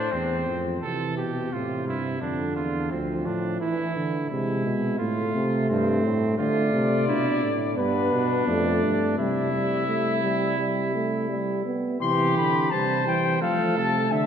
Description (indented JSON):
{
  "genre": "classical, imitative canzona for brass ensemble",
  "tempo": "86 BPM",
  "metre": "4/4",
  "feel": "straight",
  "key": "C major from 6.4 s",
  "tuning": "A4 = 440 Hz",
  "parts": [
    { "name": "dark cornet", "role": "melody", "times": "0.0-0.8, 6.4-14.3 s", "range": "B4 to C6", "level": "-28 LUFS", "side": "left 7 dB", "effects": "none" },
    { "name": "clear trumpet", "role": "second line", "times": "0.0-14.3 s", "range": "C4 to C5", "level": "-30 LUFS", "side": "right 4 dB", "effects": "none" },
    { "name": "mellow bass trombone", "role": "bass", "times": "0.0-14.3 s", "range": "D2 to F3", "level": "-28 LUFS", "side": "right 1 dB", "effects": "none" },
    { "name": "mellow euphonium", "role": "accompaniment", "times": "0.8-14.3 s", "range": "C3 to D4", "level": "-26 LUFS", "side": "right 1 dB", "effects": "none" }
  ],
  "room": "wet church reverb, RT60 2.8 s",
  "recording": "dark, warm production",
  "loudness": "-22 LUFS",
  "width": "side -8 dB against mid",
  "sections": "0.8-12.0 A section; 12.0-14.3 B section",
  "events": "none",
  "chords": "0.0 Am; 2.2 Dm; 3.6 E; 5.0 F/A; 6.4 Dm; 7.8 G; 9.2 C; 13.4 F"
}